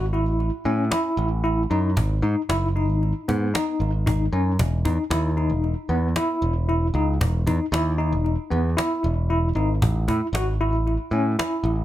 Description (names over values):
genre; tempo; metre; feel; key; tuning
progressive instrumental, band music in an uneven meter; 115 BPM; 5/4; straight; E major; A4 = 440 Hz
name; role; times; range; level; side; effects
overdriven tine electric piano; arpeggios; 0.0-11.7 s; B3 to F#4; -25 LUFS; left 1 dB; fast tremolo, digital delay
modern bright picked electric bass; bass; 0.0-11.8 s; E1 to A2; -22 LUFS; equal; none
cajon; drums; 0.1-11.7 s; none; -25 LUFS; equal; none
room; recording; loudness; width
light reverb; none; -20 LUFS; side -13 dB against mid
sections
0.0-11.8 A section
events
none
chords
0.0 Amaj7(no3); 2.0 G#7(no3); 4.6 Emaj7(no3); 9.8 Amaj7(no3)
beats
0.40 0.92 1.45 | 1.97 2.50 3.02 3.54 4.07 | 4.59 5.12 5.64 6.16 6.68 | 7.21 7.73 8.25 8.78 9.30 | 9.82 10.34 10.87 11.39